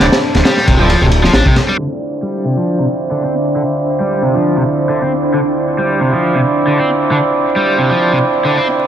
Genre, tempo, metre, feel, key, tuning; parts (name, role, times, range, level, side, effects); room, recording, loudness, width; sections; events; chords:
breakbeat, breaks; 135 BPM; 4/4; swing 56% on 16ths; D minor; A4 = 440 Hz
deep dark ambient pad; sustained chords; 0.0-8.9 s; D3 to A5; -19 LUFS; equal; chorus, built-in reverb, sidechain pumping
cranked stack guitar; riff; 0.0-8.7 s; C3 to D4; -16 LUFS; left 1 dB; overdrive, low-pass filter, dub echo
dark horn section; stabs; 0.0-8.9 s; C4 to D5; -16 LUFS; right 3 dB; low-pass filter, dub echo
phased detuned saw bass; bass; 0.0-1.4 s; D1 to A1; -13 LUFS; equal; phaser, tube saturation
crunchy breakbeat drum kit; drums; 0.0-1.7 s; kick drum, ride cymbal, snare drum; -13 LUFS; equal
swell; sound effects; 8.3-8.9 s; -22 LUFS; right 1 dB
moderate echo chamber reverb, RT60 2.0 s, small room ambience; echo-heavy mix, vinyl crackle, low-pass filter; -11 LUFS; side -10 dB against mid
0.0-1.8 A section; 1.8-8.9 B section
filter sweep 1.8-8.9; swell 8.3-8.9
0.0 Dm9